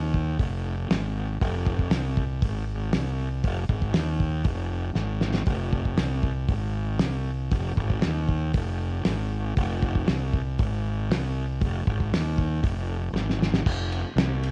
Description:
garage rock duo or trio; 118 BPM; 4/4; straight; F minor; A4 = 441 Hz
fuzz fingered electric bass; bass; 0.0-14.5 s; F1 to Eb2; -29 LUFS; equal; overdrive
cloth-damped thuddy drum kit; drums; 0.1-14.5 s; crash cymbal, hi-hat, kick drum, ride cymbal, snare drum; -28 LUFS; equal; cassette tape
light reverb; home recording on cassette; -26 LUFS; mono
0.0-13.7 A section
drum fill 5.0-5.5, 13.1-13.7
0.39 0.90 | 1.41 1.91 2.42 2.93 | 3.44 3.95 4.46 4.96 | 5.47 5.98 6.50 7.00 | 7.52 8.03 8.54 9.05 | 9.56 10.07 10.59 11.10 | 11.61 12.12 12.63 13.14 | 13.65 14.16

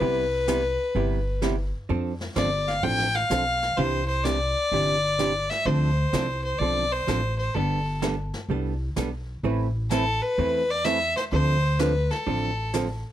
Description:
country, western swing; 127 BPM; 4/4; swing 68% on 8ths; C major; A4 = 440 Hz
rich fiddle; melody; 0.0-12.7 s; A4 to G5; -25 LUFS; left 2 dB; plate reverb
archtop guitar, miked and amplified; accompaniment; 0.0-12.9 s; C3 to B4; -28 LUFS; right 4 dB
upright bass; bass; 0.0-13.0 s; G1 to F2; -27 LUFS; equal
jazz brush drum kit; drums; 0.0-13.1 s; brushed snare drum, hi-hat, snare drum; -37 LUFS; left 2 dB
light reverb; -22 LUFS; side -12 dB against mid
0.0-13.1 A section
0.0 Cmaj7; 1.9 F6; 3.8 Cadd9; 5.7 Dm7; 7.5 Gadd9; 9.4 Amadd9; 11.3 Dm7
| 0.01 0.48 0.95 1.42 | 1.89 2.36 2.83 3.31 | 3.78 4.25 4.72 5.19 | 5.66 6.13 6.61 7.08 | 7.55 8.02 8.49 8.96 | 9.44 9.91 10.38 10.85 | 11.32 11.79 12.27 12.74

